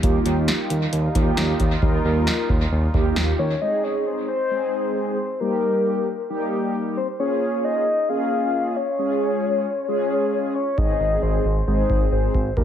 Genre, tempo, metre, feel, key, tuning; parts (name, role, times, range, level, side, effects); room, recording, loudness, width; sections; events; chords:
synth-pop; 134 BPM; 4/4; straight; Ab major; A4 = 440 Hz
mellow synth brass; accompaniment; 0.0-12.6 s; G3 to Bb4; -24 LUFS; right 1 dB; chorus
sweeping resonant pad; sustained chords; 0.0-3.6 s; G3 to F4; -32 LUFS; right 2 dB; lush chorus
smooth gliding synth bass; bass; 0.0-3.5, 10.8-12.6 s; Ab1 to Eb2; -22 LUFS; equal
electro analog drum machine; drums; 0.0-3.3, 10.8-12.6 s; hi-hat, kick drum, snare drum; -23 LUFS; equal; dub echo
soft octave-layered synth lead; melody; 3.4-12.6 s; Bb4 to F5; -23 LUFS; left 2 dB; chorus, dub echo
moderate spring reverb, RT60 1.3 s; echo-heavy mix; -19 LUFS; side -9 dB against mid
0.0-3.6 A section; 3.6-12.6 B section
0.0 Ebadd9; 3.6 Ab; 5.4 Eb; 7.2 Bbm7; 9.0 Db; 10.8 Ab